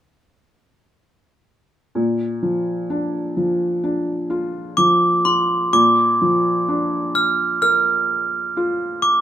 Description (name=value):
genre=children's music, lullaby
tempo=64 BPM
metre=4/4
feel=rubato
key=Bb major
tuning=A4 = 440 Hz
part: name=felt-muted upright piano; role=accompaniment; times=2.0-9.2 s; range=Bb2 to Bb4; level=-21 LUFS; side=left 1 dB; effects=none
part: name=glockenspiel with brass mallets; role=melody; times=4.8-9.2 s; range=C6 to F6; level=-16 LUFS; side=right 2 dB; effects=none
room=light reverb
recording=minimal, uncompressed stereo recording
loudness=-16 LUFS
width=side -11 dB against mid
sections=2.0-5.7 A section; 5.7-9.2 B section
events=none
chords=2.0 Bb